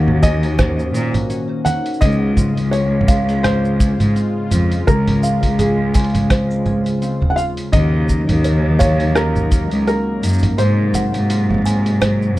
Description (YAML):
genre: folktronica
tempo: 84 BPM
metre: 4/4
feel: swing 56% on 16ths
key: Db major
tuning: A4 = 438 Hz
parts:
  - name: felt-muted upright piano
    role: melody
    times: 0.0-12.4 s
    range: Ab4 to Gb5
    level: -23 LUFS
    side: equal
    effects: tape echo
  - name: warm analog pad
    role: sustained chords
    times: 0.0-12.4 s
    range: C3 to Gb4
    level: -26 LUFS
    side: equal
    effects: chorus
  - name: concert harp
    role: arpeggios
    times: 0.0-12.4 s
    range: Ab2 to Bb4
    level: -23 LUFS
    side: left 3 dB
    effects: none
  - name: clear cello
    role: bass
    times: 0.0-12.4 s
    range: Db2 to Bb2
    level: -17 LUFS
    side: equal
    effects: tube saturation
  - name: lo-fi sampler-style drum kit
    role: drums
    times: 0.1-12.3 s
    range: congas, hi-hat, rim click, shaker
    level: -23 LUFS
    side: right 1 dB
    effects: studio reverb
  - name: music box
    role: second line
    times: 0.2-12.4 s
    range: Db4 to Ab5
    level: -27 LUFS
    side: right 2 dB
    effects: tape echo
  - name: kick drum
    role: drums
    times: 0.2-9.7 s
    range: none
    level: -15 LUFS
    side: equal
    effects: studio reverb
room: little or no reverb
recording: dry, close 1970s-style studio recording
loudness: -14 LUFS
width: side -16 dB against mid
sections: 0.0-12.4 A section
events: kick drops out 10.6-12.4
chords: 0.0 Ebm7; 2.0 Dbmaj7; 7.7 Ebm7; 10.6 Ab13